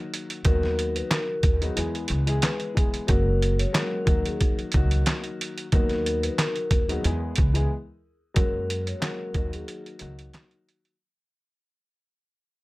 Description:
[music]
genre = hip hop, boom-bap hip-hop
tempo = 91 BPM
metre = 4/4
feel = swing 54% on 16ths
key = unclear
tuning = A4 = 440 Hz
[part]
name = dark baby grand piano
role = accompaniment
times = 0.0-10.9 s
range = D#3 to G#4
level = -32 LUFS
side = left 2 dB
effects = cassette tape, high-pass filter, low-pass filter
[part]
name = trip hop sampler-style drum kit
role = drums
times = 0.1-11.0 s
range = handclaps, hi-hat, kick drum, snare drum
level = -24 LUFS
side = equal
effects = none
[part]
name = vibraphone with soft mallets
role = melody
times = 0.4-9.8 s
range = G#4 to C#5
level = -30 LUFS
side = left 1 dB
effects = high-pass filter, low-pass filter, tape echo
[part]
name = upright bass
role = bass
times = 0.5-10.3 s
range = F#1 to F#2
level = -26 LUFS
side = equal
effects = none
[sound]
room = little or no reverb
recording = none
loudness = -22 LUFS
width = side -21 dB against mid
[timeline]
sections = 0.0-8.4 A section; 8.4-11.0 B section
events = break 7.7-8.4, 9.7-11.0; fade-out 8.4-11.0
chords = 0.5 B/D#; 1.8 E; 3.1 F#add9; 4.1 D#m; 5.7 B/D#; 7.0 E; 8.4 F#add9; 9.4 D#m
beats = | 0.45 1.11 1.77 2.43 | 3.09 3.75 4.41 5.07 | 5.72 6.38 7.04 7.70 | 8.36 9.02 9.68 10.34

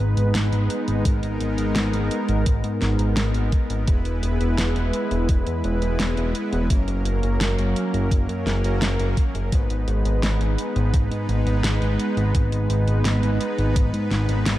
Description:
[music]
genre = synthwave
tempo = 85 BPM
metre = 4/4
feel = straight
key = G# minor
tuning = A4 = 440 Hz
[part]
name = soft supersaw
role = sustained chords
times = 0.0-14.6 s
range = F#3 to B4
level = -25 LUFS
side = equal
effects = sidechain pumping
[part]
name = fat analog bass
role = bass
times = 0.0-14.6 s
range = E1 to G#2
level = -22 LUFS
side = equal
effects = sidechain pumping
[part]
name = pop drum kit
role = drums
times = 0.2-14.6 s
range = hi-hat, snare drum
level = -28 LUFS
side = equal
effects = none
[part]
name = electronic kick drum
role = drums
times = 1.1-13.9 s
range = none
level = -20 LUFS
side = equal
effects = none
[sound]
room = light reverb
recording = dark, warm production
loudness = -20 LUFS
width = side -14 dB against mid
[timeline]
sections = 0.0-14.6 A section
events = none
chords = 0.0 G#m; 3.9 E; 6.7 F#; 9.5 G#m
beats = 0.35 | 1.05 1.76 2.46 3.17 | 3.88 4.58 5.29 6.00 | 6.70 7.41 8.11 8.82 | 9.52 10.23 10.94 11.64 | 12.35 13.05 13.76 14.46

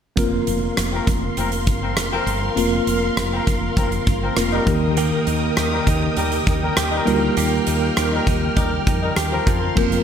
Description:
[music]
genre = 1980s-style pop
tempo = 100 BPM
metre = 4/4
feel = straight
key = unclear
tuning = A4 = 440 Hz
[part]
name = tine electric piano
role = accompaniment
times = 0.2-10.0 s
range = Eb3 to Bb4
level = -23 LUFS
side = equal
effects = medium stereo tremolo
[part]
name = string machine, violas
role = sustained chords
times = 0.2-10.0 s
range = Bb4 to F6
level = -26 LUFS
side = equal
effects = ensemble chorus
[part]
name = woody fretless electric bass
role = bass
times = 0.2-10.0 s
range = F1 to F2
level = -25 LUFS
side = equal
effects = none
[part]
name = huge arena drum kit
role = drums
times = 0.2-10.0 s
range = crash cymbal, hi-hat, kick drum, rim click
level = -22 LUFS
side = equal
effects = gated reverb
[part]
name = mellow horn section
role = stabs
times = 0.9-9.7 s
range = F3 to Bb4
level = -28 LUFS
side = left 4 dB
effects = ping-pong delay
[part]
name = direct-recorded clean electric guitar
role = riff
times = 5.0-10.0 s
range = F3 to G4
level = -27 LUFS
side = right 6 dB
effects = lush chorus, ping-pong delay
[sound]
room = light reverb, studio reverb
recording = none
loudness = -17 LUFS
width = side -8 dB against mid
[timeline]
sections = 0.2-9.8 A section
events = none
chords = 0.2 Fsus4; 4.7 Eb; 9.5 Fsus4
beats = | 0.17 0.77 1.37 1.97 | 2.57 3.17 3.77 4.37 | 4.97 5.57 6.17 6.77 | 7.37 7.97 8.57 9.17 | 9.77

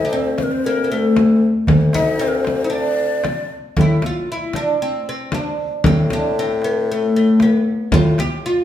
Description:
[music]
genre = Arabic maqam ensemble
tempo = 115 BPM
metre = 4/4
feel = straight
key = D maqam hijaz, A maqam bayati from 3.8 s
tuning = A4 = 444 Hz
[part]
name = oud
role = melody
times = 0.0-8.6 s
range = A3 to G4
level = -18 LUFS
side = left 1 dB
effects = none
[part]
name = breathy hollow ney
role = second line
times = 0.0-3.5 s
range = A4 to Eb5+34c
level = -24 LUFS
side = left 4 dB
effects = none
[part]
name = warm bassoon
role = bass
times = 0.0-8.2 s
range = D2 to A2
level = -22 LUFS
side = left 3 dB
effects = none
[part]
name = darbuka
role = percussion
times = 0.4-8.3 s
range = none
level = -19 LUFS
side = right 1 dB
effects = none
[part]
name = frame drum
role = percussion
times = 0.4-8.3 s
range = none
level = -22 LUFS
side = left 2 dB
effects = none
[sound]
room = wet large studio reverb, RT60 1.3 s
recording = band playing live in one room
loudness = -15 LUFS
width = side -11 dB against mid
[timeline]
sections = 0.0-3.8 A section; 3.8-8.6 B section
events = none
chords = none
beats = 0.12 0.64 1.16 | 1.68 2.20 2.72 3.24 | 3.76 4.28 4.80 5.32 | 5.84 6.36 6.88 7.40 | 7.92 8.44

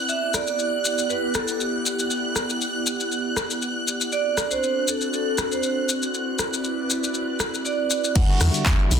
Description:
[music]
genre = deep house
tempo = 119 BPM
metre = 4/4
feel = swing 53% on 16ths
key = E minor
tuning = A4 = 440 Hz
[part]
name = airy breathy pad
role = sustained chords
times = 0.0-9.0 s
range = E3 to F#5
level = -28 LUFS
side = equal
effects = chorus, sidechain pumping
[part]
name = string machine, violins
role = texture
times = 0.0-8.2 s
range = F#6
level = -30 LUFS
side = equal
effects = ensemble chorus, sidechain pumping
[part]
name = vibraphone with medium hard mallets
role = melody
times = 0.1-9.0 s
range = G4 to F#5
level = -27 LUFS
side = right 4 dB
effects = dub echo
[part]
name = maracas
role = percussion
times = 0.1-9.0 s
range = none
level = -27 LUFS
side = left 4 dB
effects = none
[part]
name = punchy analog drum machine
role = drums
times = 0.3-9.0 s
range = crash cymbal, handclaps, hi-hat, rim click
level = -27 LUFS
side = equal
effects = soft clipping on snare, low-pass filter on snare, low-pass filter on hats, low-pass filter on cymbals, low-pass filter on room
[part]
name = round analog bass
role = bass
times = 8.2-9.0 s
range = B1 to E2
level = -20 LUFS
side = equal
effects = sidechain pumping
[part]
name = electronic kick drum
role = drums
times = 8.2-8.8 s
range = none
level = -20 LUFS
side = equal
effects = none
[part]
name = barky tine electric piano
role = stabs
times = 8.3-9.0 s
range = D3 to F#4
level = -27 LUFS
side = left 1 dB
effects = overdrive, medium stereo tremolo, sidechain pumping, digital delay
[sound]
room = light reverb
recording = dense, heavily limited modern master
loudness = -21 LUFS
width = side -7 dB against mid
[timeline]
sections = 0.0-8.2 A section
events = none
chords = 0.1 Em9; 4.1 D7; 5.9 Cmaj9#11; 8.2 Em9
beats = | 0.09 0.59 1.10 1.60 | 2.11 2.61 3.11 3.62 | 4.12 4.63 5.13 5.63 | 6.14 6.64 7.15 7.65 | 8.16 8.66

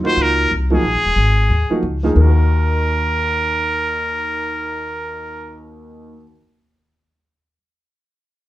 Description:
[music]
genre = modal jazz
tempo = 181 BPM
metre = 4/4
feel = swing 62% on 8ths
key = Eb minor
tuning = A4 = 440 Hz
[part]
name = warm grand piano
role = accompaniment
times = 0.0-6.4 s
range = Eb2 to Bb4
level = -23 LUFS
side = right 2 dB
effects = none
[part]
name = upright bass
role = bass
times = 0.0-6.2 s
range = Eb1 to Eb2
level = -17 LUFS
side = left 1 dB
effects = none
[part]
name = trumpet with straight mute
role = melody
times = 0.1-5.6 s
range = Ab4 to C5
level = -19 LUFS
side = equal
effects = none
[sound]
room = moderate studio reverb, RT60 0.7 s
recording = heard from further back in the room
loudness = -15 LUFS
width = side -15 dB against mid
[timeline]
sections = 0.0-2.2 A section; 2.2-4.8 B section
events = none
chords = 0.0 Eb9sus4; 2.2 Ebm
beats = 0.18 0.51 | 0.84 1.17 1.50 1.84 | 2.17 2.50 2.83 3.17 | 3.50 3.83 4.16 4.49

